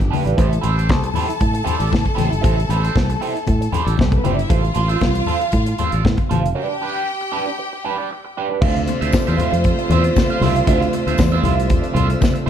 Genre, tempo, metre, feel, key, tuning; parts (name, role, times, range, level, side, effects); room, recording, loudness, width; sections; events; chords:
disco; 117 BPM; 4/4; straight; A4 = 437 Hz
clear studio string section; second line; 0.0-12.5 s; G3 to A5; -24 LUFS; equal
electric guitar at the edge of break-up; accompaniment; 0.0-12.5 s; D4 to F5; -24 LUFS; right 6 dB; wah
fingered electric bass; bass; 0.0-12.5 s; F1 to A2; -19 LUFS; equal
modern studio drum kit; drums; 0.0-12.5 s; crash cymbal, hi-hat, kick drum, snare drum; -20 LUFS; equal
congas; percussion; 0.1-12.3 s; -25 LUFS; left 6 dB
bright tonewheel organ; sustained chords; 8.6-12.5 s; C3 to E5; -26 LUFS; right 1 dB; overdrive, slow rotary speaker
tambourine; percussion; 9.1-12.3 s; -38 LUFS; left 7 dB
moderate large studio reverb, RT60 0.8 s; dark, warm production; -16 LUFS; side -9 dB against mid
0.0-8.6 A section; 8.6-12.5 B section
break 6.6-8.6
0.4 Am7; 4.5 Dm7/A (rootless); 6.6 G/D; 8.6 Dm9